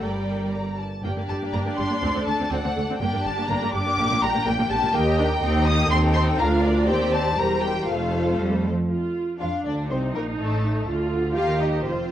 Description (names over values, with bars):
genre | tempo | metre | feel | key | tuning
quick classical-period movement for string orchestra | 122 BPM | 2/4 | rubato | G minor | A4 = 437 Hz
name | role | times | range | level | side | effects
warm symphonic violin section | melody | 0.0-12.1 s | A4 to Eb6 | -27 LUFS | left 2 dB | none
clear symphonic violin section | second line | 0.0-12.1 s | A3 to G5 | -29 LUFS | left 2 dB | none
bright symphonic viola section | accompaniment | 0.0-12.1 s | G3 to G4 | -26 LUFS | right 1 dB | none
rich symphonic double bass section | bass | 0.0-12.1 s | E1 to F2 | -28 LUFS | right 1 dB | none
warm studio cello section | bass | 0.0-12.1 s | D2 to G3 | -27 LUFS | equal | none
room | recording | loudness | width
light reverb | worn, warbling old tape, cassette tape, warbly pitch drift | -20 LUFS | side -11 dB against mid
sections
0.0-1.0 A section; 1.0-8.9 B section; 8.9-12.1 A section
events
none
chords
0.0 Gm; 2.0 D7; 3.0 Gm; 4.0 Gm/Bb; 4.9 Eb; 5.4 Cm/Eb; 5.9 Am7b5/Eb; 6.4 Bb/D; 6.9 Cm/Eb; 7.4 C7/E; 7.9 F; 8.9 Dm; 9.9 Adim; 10.9 Dm; 11.4 Ebadd9